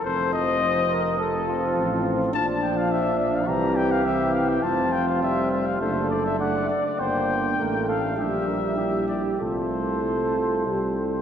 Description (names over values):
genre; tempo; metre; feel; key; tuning
classical, brass quintet; 102 BPM; 4/4; rubato; F major; A4 = 439 Hz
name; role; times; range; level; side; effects
mellow trumpet; melody; 0.0-11.2 s; A4 to Bb5; -26 LUFS; left 4 dB; none
warm flugelhorn; second line; 0.0-11.2 s; D4 to D5; -28 LUFS; right 3 dB; none
bright trombone; accompaniment; 0.0-11.2 s; E3 to Bb3; -28 LUFS; right 1 dB; none
mellow French horn; accompaniment; 0.0-11.2 s; C4 to A4; -30 LUFS; left 2 dB; none
mellow tuba; bass; 0.0-11.2 s; F1 to C2; -28 LUFS; right 2 dB; none
room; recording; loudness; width
wet church reverb, RT60 3.1 s; dark, warm production; -21 LUFS; side -8 dB against mid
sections
0.0-11.2 A section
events
none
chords
0.0 F; 2.3 Bb(#11); 3.5 C; 4.6 F5; 5.8 D/F#; 7.0 Gm; 8.2 Gm/Bb; 9.4 F/C; 10.7 C5